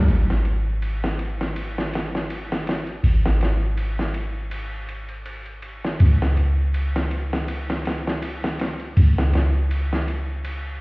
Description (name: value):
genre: trip hop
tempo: 81 BPM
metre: 4/4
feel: swing 54% on 16ths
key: unclear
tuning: A4 = 440 Hz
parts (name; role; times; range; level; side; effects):
- soft 808-style bass; bass; 0.0-10.8 s; G#1 to C#2; -20 LUFS; equal; tube saturation
- dusty soul sampler-style drum kit; drums; 0.1-10.6 s; hi-hat, ride cymbal, snare drum; -27 LUFS; equal; high-pass filter on cymbals, high-pass filter on snare, high-pass filter on hats, high-pass filter on kick
room: light reverb, digital ambience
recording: heard muffled through a wall, stone room reverb, vinyl crackle, EQ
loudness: -20 LUFS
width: side -26 dB against mid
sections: 0.1-10.8 A section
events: none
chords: none